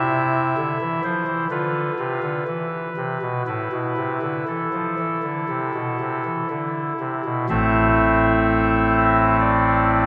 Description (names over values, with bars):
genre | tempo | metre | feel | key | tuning
classical, chorale-style piece for pipe organ | 58-65 BPM | 4/4 | rubato | A minor | A4 = 439 Hz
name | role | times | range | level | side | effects
chamber organ, soft reed | solo | 0.0-10.1 s | A1 to E5 | -21 LUFS | equal | none
room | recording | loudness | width
wet church reverb, RT60 3.4 s | recorded in a church or concert hall | -21 LUFS | mono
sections
0.0-7.5 A section; 7.5-10.1 B section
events
none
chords
0.0 Cadd9; 1.5 Bdim/D; 2.5 E5; 3.5 Am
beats
0.59 1.52 2.48 | 3.47 4.48 5.51 6.52 | 7.51 8.47 9.42